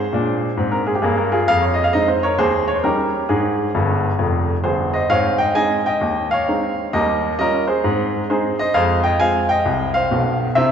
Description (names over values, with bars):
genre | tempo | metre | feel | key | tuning
jazz, stride piano | 132 BPM | 4/4 | swing 64% on 8ths | Ab major | A4 = 439 Hz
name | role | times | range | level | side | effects
clear baby grand piano | solo | 0.0-10.7 s | F1 to Ab5 | -16 LUFS | equal | none
room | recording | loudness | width
wet church reverb, RT60 2.7 s | recorded in a church or concert hall, nothing above 7.8 kHz | -16 LUFS | side -8 dB against mid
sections
0.0-5.1 A section; 5.1-10.7 B section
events
grand piano fill 3.7-5.1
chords
0.0 Ab; 1.5 Fm7; 2.4 Eb7; 3.3 Ab; 6.9 Eb9; 7.8 Ab; 8.7 Fm